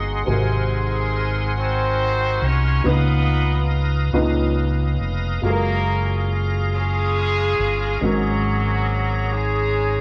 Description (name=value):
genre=gospel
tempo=46 BPM (dotted quarters)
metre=6/8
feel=straight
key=unclear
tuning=A4 = 441 Hz
part: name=clear horn section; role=melody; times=0.0-10.0 s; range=Gb3 to Db5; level=-26 LUFS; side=equal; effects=none
part: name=dark upright piano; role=accompaniment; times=0.0-10.0 s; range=Ab2 to C5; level=-28 LUFS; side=equal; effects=none
part: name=bright tonewheel organ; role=sustained chords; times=0.0-10.0 s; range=Ab4 to Eb6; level=-31 LUFS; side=equal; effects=fast rotary speaker, overdrive, chorus vibrato
part: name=fingered electric bass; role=bass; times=0.0-10.0 s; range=F1 to Db2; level=-24 LUFS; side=equal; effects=none
room=wet studio reverb, RT60 0.7 s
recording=band playing live in one room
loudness=-21 LUFS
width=mono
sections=0.0-10.0 A section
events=none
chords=0.3 Ab9; 2.8 Db13; 5.4 Gbmaj9; 8.0 Ab9sus4